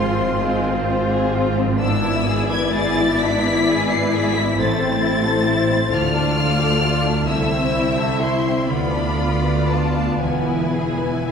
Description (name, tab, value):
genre	classical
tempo	38-45 BPM (dotted quarters)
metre	6/8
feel	rubato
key	A minor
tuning	A4 = 441 Hz
part	rich symphonic violin section	melody	0.0-11.3 s	G#5 to C7	-25 LUFS	left 3 dB	none
part	rich studio violin section	second line	0.0-11.3 s	Ab3 to E5	-24 LUFS	left 2 dB	none
part	warm symphonic viola section	accompaniment	0.0-11.3 s	A3 to F4	-24 LUFS	left 1 dB	none
part	concert harp	arpeggios	0.0-11.3 s	Ab2 to D6	-24 LUFS	left 3 dB	none
part	rich symphonic cello section	bass	0.0-11.3 s	C2 to A2	-25 LUFS	right 3 dB	none
part	rich symphonic double bass section	bass	0.0-11.3 s	E1 to D2	-26 LUFS	right 3 dB	none
room	wet concert hall reverb, RT60 1.9 s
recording	heard from further back in the room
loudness	-17 LUFS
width	side -6 dB against mid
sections	0.0-11.3 A section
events	none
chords	0.0 Fm/Ab; 1.8 E7/G#; 4.6 Am; 5.9 Dm; 7.3 Am/C; 8.7 Bdim/D; 10.2 E